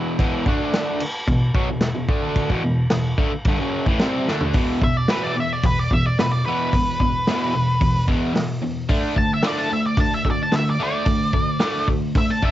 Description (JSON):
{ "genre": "garage rock duo or trio", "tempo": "110 BPM", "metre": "4/4", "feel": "straight", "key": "unclear", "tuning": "A4 = 440 Hz", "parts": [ { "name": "crunchy overdriven guitar", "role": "riff", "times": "0.0-12.5 s", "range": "E2 to D4", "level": "-22 LUFS", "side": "equal", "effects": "cassette tape" }, { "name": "vintage drum kit", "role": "drums", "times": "0.2-12.5 s", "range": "crash cymbal, hi-hat, kick drum, snare drum, toms", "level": "-22 LUFS", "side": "equal", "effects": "cassette tape" }, { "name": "octave-fuzz lead guitar", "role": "melody", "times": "4.8-12.5 s", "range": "B4 to A5", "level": "-23 LUFS", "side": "equal", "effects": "distortion, cassette tape" } ], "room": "light reverb", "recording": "home recording on cassette, nothing above 7.7 kHz", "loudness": "-18 LUFS", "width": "side -13 dB against mid", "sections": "0.0-4.5 A section; 4.5-12.5 B section", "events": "drum fill 4.3; lead electric guitar solo 4.5-12.5", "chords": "0.5 D5; 1.0 E5; 8.9 D5", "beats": "| 0.19 0.74 1.28 1.83 | 2.37 2.91 3.46 4.00 | 4.55 5.09 5.63 6.18 | 6.72 7.26 7.81 8.35 | 8.89 9.44 9.98 10.53 | 11.07 11.61 12.15" }